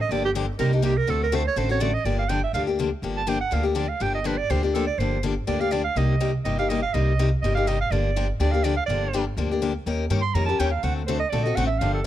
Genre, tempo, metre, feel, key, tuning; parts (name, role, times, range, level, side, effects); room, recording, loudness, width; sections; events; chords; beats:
acoustic string swing (jazz manouche); 246 BPM; 4/4; swing 54% on 8ths; G minor; A4 = 441 Hz
clear clarinet; second line; 0.0-12.1 s; D4 to C6; -27 LUFS; right 6 dB
picked steel-string acoustic guitar; accompaniment; 0.1-12.1 s; C3 to Bb4; -26 LUFS; left 5 dB
upright bass; bass; 0.1-12.1 s; G1 to G2; -25 LUFS; right 1 dB
studio ambience; dry, close 1970s-style studio recording; -21 LUFS; side -12 dB against mid
0.0-2.1 A section; 2.1-12.1 A section
clarinet solo 0.0-12.1
0.1 Gm7; 0.6 Cm7; 1.1 D7; 2.1 Gm7; 6.0 Cm7; 7.9 Gm7; 9.9 Eb7; 10.8 D7
| 0.10 0.34 0.59 0.83 | 1.08 1.32 1.56 1.81 | 2.05 2.30 2.54 2.79 | 3.03 3.27 3.52 3.76 | 4.01 4.25 4.50 4.74 | 4.98 5.23 5.47 5.72 | 5.96 6.21 6.45 6.69 | 6.94 7.18 7.43 7.67 | 7.91 8.16 8.40 8.65 | 8.89 9.13 9.38 9.62 | 9.87 10.11 10.35 10.60 | 10.84 11.09 11.33 11.57 | 11.82 12.06